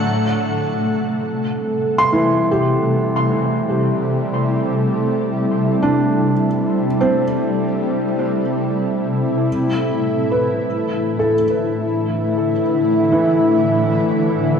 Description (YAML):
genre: ambient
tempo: free time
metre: none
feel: none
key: A dorian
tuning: A4 = 439 Hz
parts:
  - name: shimmering ambient pad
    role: sustained chords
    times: 0.0-14.6 s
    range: A2 to F#5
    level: -17 LUFS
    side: equal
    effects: chorus, built-in reverb
  - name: felt-muted upright piano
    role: arpeggios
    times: 2.0-14.6 s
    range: E3 to C6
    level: -20 LUFS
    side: right 1 dB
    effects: tape echo
room: wet echo chamber reverb, RT60 2.5 s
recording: echo-heavy mix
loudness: -16 LUFS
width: side -6 dB against mid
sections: 0.1-14.6 A section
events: filter sweep on ambient pad 0.1-14.6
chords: 0.1 Am7; 9.5 Dsus2/A